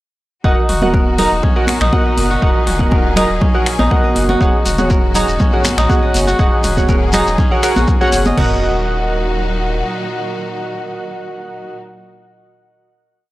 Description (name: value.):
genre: afro house.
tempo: 121 BPM.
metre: 4/4.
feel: straight.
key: Eb minor pentatonic.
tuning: A4 = 440 Hz.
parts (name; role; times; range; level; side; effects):
clear studio string section; sustained chords; 0.4-11.8 s; Ab2 to Ab4; -25 LUFS; left 1 dB; sidechain pumping.
kora; arpeggios; 0.4-10.0 s; Db4 to Eb5; -20 LUFS; equal; sidechain pumping, tape echo.
warm analog keys; stabs; 0.4-11.8 s; Gb4 to Bb5; -19 LUFS; right 2 dB; chorus, sidechain pumping, tape echo.
warm sub bass; bass; 0.4-9.8 s; Eb1 to Bb1; -20 LUFS; equal; sidechain pumping.
deep house drum kit; drums; 0.4-8.5 s; crash cymbal, kick drum, toms; -16 LUFS; equal; overdrive, studio reverb.
deep house drum kit; drums; 0.7-8.2 s; finger snaps, hi-hat, toms; -24 LUFS; equal; overdrive, studio reverb.
congas; percussion; 0.8-8.4 s; none; -21 LUFS; right 1 dB; none.
shekere; percussion; 4.4-8.3 s; none; -25 LUFS; left 2 dB; none.
room: small room ambience.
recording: dry, gritty hardware recording, transformer saturation, cassette tape.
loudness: -12 LUFS.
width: side -17 dB against mid.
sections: 0.4-8.4 drop; 8.4-12.3 final chord.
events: drop 0.4-8.4.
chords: 0.4 Ebm.